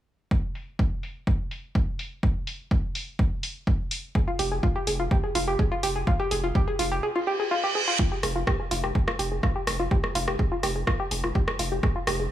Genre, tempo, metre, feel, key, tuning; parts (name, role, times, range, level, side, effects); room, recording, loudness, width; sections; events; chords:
melodic techno; 125 BPM; 4/4; straight; F minor; A4 = 441 Hz
electronic kick drum; drums; 0.3-11.9 s; -25 LUFS; equal
house drum kit; drums; 0.6-12.2 s; hi-hat, rim click; -30 LUFS; equal; sidechain pumping on hats, low-pass filter on hats, low-pass filter on snare
woody wave-folded pluck; arpeggios; 4.2-12.2 s; F4 to Ab4; -28 LUFS; equal; chorus, sidechain pumping, dub echo
round analog bass; bass; 4.4-12.3 s; F1; -30 LUFS; equal; sidechain pumping
reverse cymbal; sound effects; 7.2-8.0 s; -28 LUFS; right 4 dB
light reverb; small room ambience; -24 LUFS; side -12 dB against mid
0.3-8.0 A section; 8.0-12.3 B section
reverse cymbal 7.2-8.0; filter sweep on synth pluck 8.0-12.3
0.3 N.C.; 8.0 Fsus2